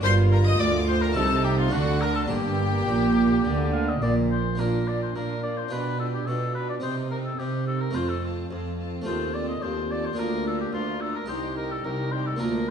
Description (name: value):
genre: classical, baroque-style concerto movement with solo episodes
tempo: 107 BPM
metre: 4/4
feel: straight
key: G minor, Bb major from 4.6 s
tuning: A4 = 440 Hz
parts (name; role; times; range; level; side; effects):
- warm chamber violin section; melody; 0.0-12.7 s; F5 to Eb6; -36 LUFS; left 2 dB; none
- warm oboe; melody; 0.0-12.7 s; F4 to F5; -30 LUFS; left 4 dB; none
- rich chamber violin section; second line; 0.0-12.7 s; Eb4 to Eb5; -37 LUFS; left 3 dB; none
- harpsichord; accompaniment; 0.0-12.7 s; C2 to Bb4; -30 LUFS; right 1 dB; none
- warm chamber viola section; accompaniment; 0.0-12.7 s; Bb3 to F4; -30 LUFS; right 3 dB; none
- rich chamber double bass section; bass; 0.0-4.6 s; G1 to D2; -27 LUFS; right 2 dB; none
- warm chamber cello section; bass; 0.0-12.7 s; C2 to D3; -28 LUFS; right 2 dB; none
room: wet recital hall reverb, RT60 1.6 s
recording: minimal, uncompressed stereo recording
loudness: -23 LUFS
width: side -7 dB against mid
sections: 0.0-4.6 A section; 4.6-12.7 B section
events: none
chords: 0.0 Gm; 1.2 Adim/C; 1.7 D; 2.3 Gm; 4.6 Bb; 5.7 G7/B; 6.8 Cm; 8.0 F; 9.1 F7/Eb; 10.2 Bb/D; 11.3 Cm